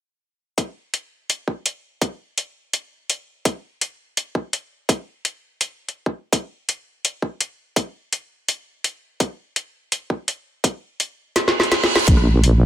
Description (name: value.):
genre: half-time drum and bass.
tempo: 167 BPM.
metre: 4/4.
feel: swing 53% on 16ths, half-time.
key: unclear.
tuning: A4 = 440 Hz.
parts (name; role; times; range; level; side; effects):
drum and bass drum kit; drums; 0.6-12.5 s; hi-hat, rim click, snare drum; -19 LUFS; equal; none.
electronic kick drum; drums; 0.6-12.2 s; none; -20 LUFS; equal; high-pass filter on kick, high-pass filter on room.
reverse cymbal; sound effects; 11.5-12.1 s; none; -24 LUFS; right 5 dB; none.
deep soft wobble bass; bass; 12.1-12.7 s; Bb1; -14 LUFS; equal; chorus.
room: light reverb.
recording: none.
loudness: -21 LUFS.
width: side -12 dB against mid.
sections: 0.6-12.1 A section.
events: kick drops out 11.4-12.1; drum fill 11.4-12.1; reverse cymbal 11.5-12.1.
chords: none.